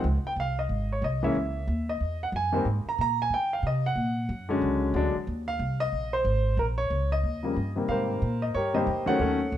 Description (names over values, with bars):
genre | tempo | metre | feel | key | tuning
jazz piano trio | 184 BPM | 4/4 | swing 61% on 8ths | unclear | A4 = 440 Hz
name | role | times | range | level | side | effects
clear concert grand piano | melody | 0.0-9.6 s | C3 to Bb5 | -27 LUFS | equal | none
upright bass | bass | 0.0-9.6 s | Ab1 to Eb3 | -29 LUFS | equal | none
room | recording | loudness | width
light reverb | none | -25 LUFS | side -11 dB against mid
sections
0.0-7.9 A section; 7.9-9.6 B section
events
none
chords
0.1 Dbsus2; 1.4 Gb7(no3); 2.7 Abadd9; 4.0 Bb7alt; 5.3 Ebsus2; 6.6 Bbm; 7.2 Eb; 7.9 Abmaj9